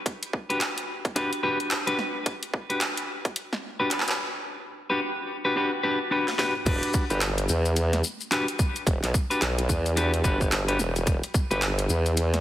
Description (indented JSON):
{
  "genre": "glitch hop",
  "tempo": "109 BPM",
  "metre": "4/4",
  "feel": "swing 60% on 16ths",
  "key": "E minor",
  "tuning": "A4 = 440 Hz",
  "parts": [
    { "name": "drum and bass drum kit", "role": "drums", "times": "0.1-12.4 s", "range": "crash cymbal, handclaps, hi-hat, shaker, snare drum, toms", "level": "-29 LUFS", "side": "equal", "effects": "overdrive, high-pass filter on snare, studio ambience, high-pass filter on hats, high-pass filter on toms, high-pass filter on cymbals, high-pass filter on perc" },
    { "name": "electronic kick drum", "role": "drums", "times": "0.1-3.3, 6.7-11.5 s", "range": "none", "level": "-25 LUFS", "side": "equal", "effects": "overdrive, high-pass filter on kick, studio ambience" },
    { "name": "clean electric guitar", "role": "stabs", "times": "0.5-11.6 s", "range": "D4 to B4", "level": "-28 LUFS", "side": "left 1 dB", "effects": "spring reverb, sidechain pumping, low-pass filter, ping-pong delay" },
    { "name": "formant-sweep wobble bass", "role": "bass", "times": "6.7-12.4 s", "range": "E1 to E2", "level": "-24 LUFS", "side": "equal", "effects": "chorus, overdrive" }
  ],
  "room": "moderate lush hall reverb, RT60 1.8 s, digital ambience",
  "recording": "heavily compressed radio sound, multiband compression",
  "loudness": "-23 LUFS",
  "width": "side -13 dB against mid",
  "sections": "0.0-6.7 A section; 6.7-12.4 B section",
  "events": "build-up 0.0-6.7; drum fill 6.3-6.7; drop 6.7-12.4",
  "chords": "0.0 Dadd11; 6.7 Em7"
}